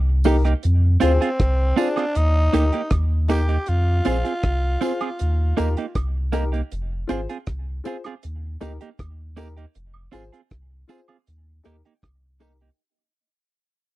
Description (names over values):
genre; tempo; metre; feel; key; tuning
roots reggae; 79 BPM; 4/4; straight; unclear; A4 = 441 Hz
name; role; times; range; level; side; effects
warm sub bass; bass; 0.0-12.7 s; F1 to F2; -20 LUFS; equal; none
warm upright piano; stabs; 0.2-12.5 s; Eb4 to C5; -26 LUFS; left 5 dB; none
deep reggae drum kit; drums; 0.2-12.8 s; hi-hat, kick drum, rim click; -24 LUFS; equal; none
tambourine and woodblock; percussion; 0.2-12.6 s; none; -38 LUFS; right 6 dB; none
clean electric guitar; accompaniment; 0.3-12.7 s; Bb3 to Ab4; -25 LUFS; right 7 dB; none
growling tenor saxophone; melody; 1.0-6.0 s; C4 to G4; -26 LUFS; equal; none
room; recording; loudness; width
little or no reverb; dry, close 1970s-style studio recording; -19 LUFS; side -16 dB against mid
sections
0.0-12.8 A section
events
fade-out 0.0-12.8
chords
0.0 Eb; 0.6 Fm; 2.2 Eb; 3.7 Fm; 5.2 Eb; 6.7 Fm; 8.2 Eb; 9.7 Fm; 11.3 Eb